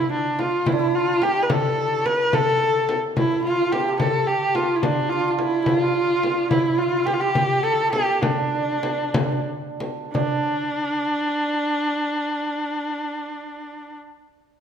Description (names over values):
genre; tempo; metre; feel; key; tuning
Persian modal ensemble; 58-72 BPM (dotted quarters); 6/8; straight; D avaz esfahan; A4 = 443 Hz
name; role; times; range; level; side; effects
clear kamancheh; melody; 0.0-14.0 s; D4 to Bb4+47c; -21 LUFS; equal; none
santur; second line; 0.0-14.0 s; D4 to C#5; -29 LUFS; right 5 dB; none
frame drum; percussion; 0.4-10.5 s; none; -26 LUFS; left 2 dB; none
room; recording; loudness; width
wet recital hall reverb, RT60 1.4 s; none; -19 LUFS; side -7 dB against mid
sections
0.0-10.1 A section; 10.1-14.3 B section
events
slowing down 6.5-10.1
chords
none